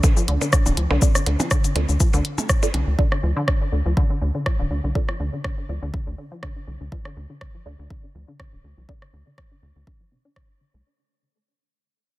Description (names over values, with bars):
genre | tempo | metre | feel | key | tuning
minimal techno | 122 BPM | 4/4 | swing 54% on 16ths | D minor | A4 = 440 Hz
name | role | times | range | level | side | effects
resonant blip pluck | riff | 0.0-10.8 s | C3 to D4 | -29 LUFS | equal | chorus, cassette tape, sidechain pumping, digital delay
electronic kick drum | drums | 0.0-10.5 s | none | -20 LUFS | equal | none
minimal click drum kit | drums | 0.0-10.5 s | cabasa, hi-hat, rim click | -27 LUFS | equal | soft clipping on snare
percussion blips | percussion | 0.0-2.8 s | none | -29 LUFS | right 3 dB | none
rubbery square bass | bass | 0.3-10.8 s | D1 to D2 | -23 LUFS | equal | sidechain pumping
filtered dub chord stab | stabs | 1.0-9.0 s | C4 to D5 | -33 LUFS | right 3 dB | phaser, wide subtle chorus, digital delay
room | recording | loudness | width
little or no reverb | dense, heavily limited modern master | -19 LUFS | side -18 dB against mid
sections
0.0-10.9 A section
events
fade-out 0.0-10.9; filter sweep on synth pluck 0.0-10.9; filter sweep on synth stab 0.0-10.9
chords
0.0 Dm7